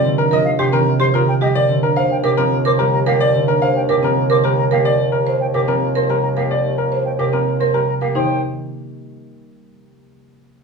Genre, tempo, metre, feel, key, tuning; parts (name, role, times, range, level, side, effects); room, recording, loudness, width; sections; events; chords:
classical, minimalist pattern music; 109 BPM; 3/4; straight; Eb major; A4 = 444 Hz
bright concert grand piano; melody; 0.0-8.4 s; G4 to F5; -20 LUFS; left 3 dB
concert harp; accompaniment; 0.0-9.8 s; C3 to Bb3; -20 LUFS; right 2 dB
buzzing marimba with medium hard mallets; arpeggios; 0.0-8.4 s; C4 to C5; -21 LUFS; right 7 dB
mellow bassoon; bass; 0.0-8.4 s; Eb2; -22 LUFS; right 1 dB
concert flute; arpeggios; 0.4-8.4 s; Eb5 to D6; -25 LUFS; left 1 dB
light reverb; small room reverb; -14 LUFS; side -4 dB against mid
0.0-8.2 A section; 8.2-9.8 B section
0.0 Eb69; 8.2 Ebadd9